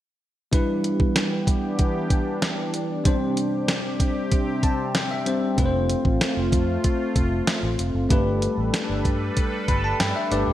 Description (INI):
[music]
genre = 1980s-style pop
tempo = 95 BPM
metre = 4/4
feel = straight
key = unclear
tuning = A4 = 442 Hz
[part]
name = bell-like tine electric piano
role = accompaniment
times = 0.5-10.5 s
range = G3 to B5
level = -25 LUFS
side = left 2 dB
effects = lush chorus
[part]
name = sweeping resonant pad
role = sustained chords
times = 0.5-10.5 s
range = C3 to B4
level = -28 LUFS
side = right 1 dB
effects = chorus
[part]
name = clean 12-bit digital drum machine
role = drums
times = 0.5-10.5 s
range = hi-hat, kick drum, snare drum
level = -23 LUFS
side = equal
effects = gated reverb
[part]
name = vintage muted fingered electric bass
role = bass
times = 5.6-10.5 s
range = Eb1 to G2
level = -26 LUFS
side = equal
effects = none
[sound]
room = moderate plate reverb, RT60 1.7 s, digital ambience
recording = bright 1980s-style digital production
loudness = -20 LUFS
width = side -13 dB against mid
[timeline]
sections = 0.5-10.5 A section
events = tine electric piano fill 4.3-5.6, 9.4-10.5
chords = 0.5 Em7; 3.1 Csus2; 5.6 F; 8.1 Gadd9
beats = | 0.53 1.16 1.79 2.42 | 3.05 3.68 4.32 4.95 | 5.58 6.21 6.84 7.47 | 8.11 8.74 9.37 10.00